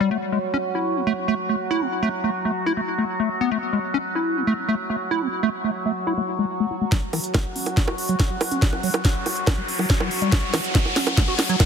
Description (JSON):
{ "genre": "psychedelic trance", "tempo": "141 BPM", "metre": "4/4", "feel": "straight", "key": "F# minor", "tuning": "A4 = 440 Hz", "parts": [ { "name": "overtone-sweeping drone", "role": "sustained chords", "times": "0.0-11.7 s", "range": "F#3 to F#4", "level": "-27 LUFS", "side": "equal", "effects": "chorus, built-in reverb, sidechain pumping" }, { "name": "liquid acid bass", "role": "riff", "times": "0.0-11.6 s", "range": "E3 to F#4", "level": "-24 LUFS", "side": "moving between left 7 dB and right 7 dB", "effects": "chorus, auto-pan, sidechain pumping, ping-pong delay" }, { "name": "drum and bass drum kit", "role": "drums", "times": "6.9-11.7 s", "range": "bongos, hi-hat, snare drum", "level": "-24 LUFS", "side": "right 2 dB", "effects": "none" }, { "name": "electronic kick drum", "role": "drums", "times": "6.9-11.7 s", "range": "none", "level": "-20 LUFS", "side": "equal", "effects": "none" }, { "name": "riser", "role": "sound effects", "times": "8.4-11.7 s", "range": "none", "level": "-29 LUFS", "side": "left 1 dB", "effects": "none" } ], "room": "light reverb", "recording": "heavily compressed radio sound, multiband compression", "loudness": "-20 LUFS", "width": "side -7 dB against mid", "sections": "0.0-6.9 A section; 6.9-11.7 B section", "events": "filter sweep on acid bass 0.0-6.9, 6.9-11.7; build-up 6.9-11.7; drum fill 6.9-11.7; riser 8.4-11.7", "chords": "0.1 A5; 6.9 F#5", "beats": "| 0.11 0.54 0.96 1.39 | 1.81 2.24 2.66 3.09 | 3.51 3.94 4.37 4.79 | 5.22 5.64 6.07 6.49 | 6.92 7.34 7.77 8.20 | 8.62 9.05 9.47 9.90 | 10.32 10.75 11.17 11.60" }